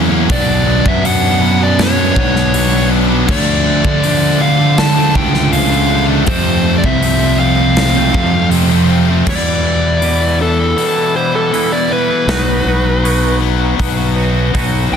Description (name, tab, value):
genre	quiet-loud alternative rock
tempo	80 BPM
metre	4/4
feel	straight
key	unclear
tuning	A4 = 439 Hz
part	distorted electric guitar	riff	0.0-15.0 s	E2 to D4	-19 LUFS	left 13 dB	overdrive
part	thick fuzz guitar	riff	0.0-9.3 s	F2 to D4	-19 LUFS	right 14 dB	distortion
part	thick fuzz guitar	riff	0.0-9.3 s	F2 to D4	-18 LUFS	right 1 dB	distortion
part	fuzz fingered electric bass	bass	0.0-15.0 s	B1 to D3	-15 LUFS	equal	overdrive
part	dark smooth lead guitar	melody	0.3-15.0 s	A4 to A5	-17 LUFS	equal	overdrive, analog delay
part	big rock drum kit	drums	0.3-14.7 s	crash cymbal, hi-hat, kick drum, snare drum	-20 LUFS	left 1 dB	none
part	twangy electric guitar	arpeggios	9.3-15.0 s	E2 to F#4	-21 LUFS	right 11 dB	phaser
room	little or no reverb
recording	dense, heavily limited modern master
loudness	-10 LUFS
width	side -7 dB against mid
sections	0.0-9.3 A section; 9.3-15.0 B section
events	half time 9.3-15.0; lead electric guitar solo 9.3-15.0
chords	0.3 Bm; 3.3 Dm; 6.3 F; 9.3 Em; 12.3 B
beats	| 0.29 1.04 1.79 2.54 | 3.28 4.03 4.78 5.53 | 6.28 7.02 7.77 8.52 | 9.27 10.02 10.78 11.53 | 12.28 13.03 13.78 14.54